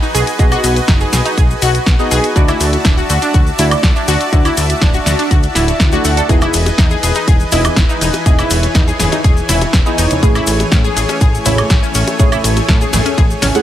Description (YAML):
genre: progressive house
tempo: 122 BPM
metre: 4/4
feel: straight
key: E major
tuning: A4 = 442 Hz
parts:
  - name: supersaw pad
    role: sustained chords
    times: 0.0-13.6 s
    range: E3 to A5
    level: -20 LUFS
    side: equal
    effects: sidechain pumping
  - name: analog pluck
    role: arpeggios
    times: 0.0-13.5 s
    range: C#4 to F#5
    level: -18 LUFS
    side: left 2 dB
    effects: chorus, sidechain pumping, digital delay
  - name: deep mellow chord stab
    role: stabs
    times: 0.0-13.6 s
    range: A3 to F#5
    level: -21 LUFS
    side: right 2 dB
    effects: chorus, phaser, sidechain pumping, digital delay
  - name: cabasa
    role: percussion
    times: 0.0-13.6 s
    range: none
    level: -24 LUFS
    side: left 4 dB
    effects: none
  - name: plucky analog bass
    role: bass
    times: 0.1-13.5 s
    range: D1 to A2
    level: -17 LUFS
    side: equal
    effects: sidechain pumping
  - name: house drum kit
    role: drums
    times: 0.1-13.6 s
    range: hi-hat, ride cymbal, snare drum, woodblock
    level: -19 LUFS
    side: equal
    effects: sidechain pumping on hats, small room ambience, sidechain pumping on perc, sidechain pumping on cymbals
  - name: electronic kick drum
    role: drums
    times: 0.4-13.3 s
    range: none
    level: -12 LUFS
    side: equal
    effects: small room ambience
  - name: swell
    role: sound effects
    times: 5.5-6.3 s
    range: none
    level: -26 LUFS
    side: right 2 dB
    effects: none
  - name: congas and bongos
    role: percussion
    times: 6.4-13.6 s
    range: none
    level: -24 LUFS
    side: right 1 dB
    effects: none
room: little or no reverb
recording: none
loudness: -10 LUFS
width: side -12 dB against mid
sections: 0.0-13.6 A section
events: swell 5.5-6.3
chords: 0.0 B6; 2.4 Dadd9; 6.3 Emaj7; 10.2 Amaj7